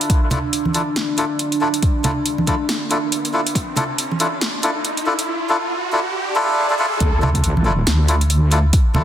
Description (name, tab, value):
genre	deep dubstep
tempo	139 BPM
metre	4/4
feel	swing 59% on 16ths, half-time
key	D minor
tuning	A4 = 442 Hz
part	dark analog pad	sustained chords	0.0-5.3 s	D4	-24 LUFS	right 1 dB	chorus
part	deep house drum kit	drums	0.0-8.8 s	hi-hat, snare drum	-22 LUFS	equal	overdrive
part	electronic kick drum	drums	0.1-3.7, 7.0-8.8 s	none	-17 LUFS	equal	overdrive
part	riser and swell	sound effects	1.3-7.0 s	none	-27 LUFS	right 1 dB	none
part	melodica	stabs	0.3-9.0 s	D4 to A4	-21 LUFS	left 1 dB	low-pass filter, dub echo
part	congas	percussion	0.3-4.2, 7.2-9.0 s	none	-23 LUFS	right 2 dB	none
part	wobble bass	bass	7.0-9.0 s	D2	-16 LUFS	equal	chorus
room	moderate echo chamber reverb, RT60 2.2 s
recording	dense, heavily limited modern master, high-pass filter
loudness	-16 LUFS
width	side -10 dB against mid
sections	0.1-7.0 A section; 7.0-9.0 B section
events	build-up 0.1-7.0; riser 1.3-7.0; swell 6.1-7.0; drop 7.0-9.0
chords	0.1 Dmadd9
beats	| 0.10 0.53 0.96 1.39 | 1.83 2.26 2.69 3.12 | 3.55 3.98 4.42 4.85 | 5.28 5.71 6.14 6.57 | 7.01 7.44 7.87 8.30 | 8.73